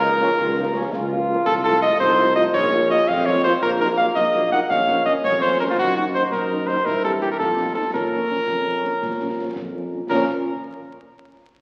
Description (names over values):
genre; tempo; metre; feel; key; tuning
military-style march for wind band; 111 BPM (dotted quarters); 6/8; straight; Bb minor; A4 = 440 Hz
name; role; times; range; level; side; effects
warm cornet; melody; 0.0-10.2 s; F4 to Gb5; -22 LUFS; equal; none
dark French horn section; accompaniment; 0.0-10.3 s; Eb3 to G4; -31 LUFS; equal; none
warm trombone section; sustained chords; 0.0-10.3 s; F3 to F4; -30 LUFS; equal; none
mellow tuba; bass; 0.0-10.2 s; Bb1 to Bb2; -29 LUFS; equal; none
concert snare drum, concert bass drum and clash cymbals; drums; 0.2-10.3 s; none; -38 LUFS; equal; none
room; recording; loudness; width
wet scoring stage reverb, RT60 2.0 s; very old 78 rpm record, vinyl crackle; -20 LUFS; mono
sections
0.0-10.1 A section; 10.1-11.2 B section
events
none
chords
0.0 Bbm/Db; 1.5 F7/C; 2.5 Bbm; 3.6 Ebm/Bb; 4.7 Bbm; 5.8 Ebm/Gb; 6.9 C/G; 7.4 F7; 7.9 Bbm